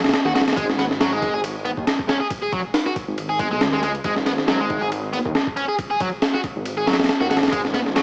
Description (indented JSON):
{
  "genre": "breakbeat, breaks",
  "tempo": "138 BPM",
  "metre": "4/4",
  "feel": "swing 55% on 16ths",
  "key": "G# minor",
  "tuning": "A4 = 439 Hz",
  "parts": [
    { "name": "detuned saw bass", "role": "bass", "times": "0.0-8.0 s", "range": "G#1 to D#2", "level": "-30 LUFS", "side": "equal", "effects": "none" },
    { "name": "breakbeat sampler-style drum kit", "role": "drums", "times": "0.0-8.0 s", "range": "hi-hat, kick drum, ride cymbal, snare drum", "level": "-24 LUFS", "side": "equal", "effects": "studio reverb, cassette tape" },
    { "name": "distorted electric guitar", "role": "riff", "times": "0.2-8.0 s", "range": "F#3 to G#4", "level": "-26 LUFS", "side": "equal", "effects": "overdrive, tube saturation, cassette tape, tape echo" }
  ],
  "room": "light reverb, digital ambience",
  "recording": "home recording on cassette, vinyl crackle, small speaker sound",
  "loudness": "-22 LUFS",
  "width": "mono",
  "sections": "0.0-8.0 A section",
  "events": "none",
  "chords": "0.0 G#5"
}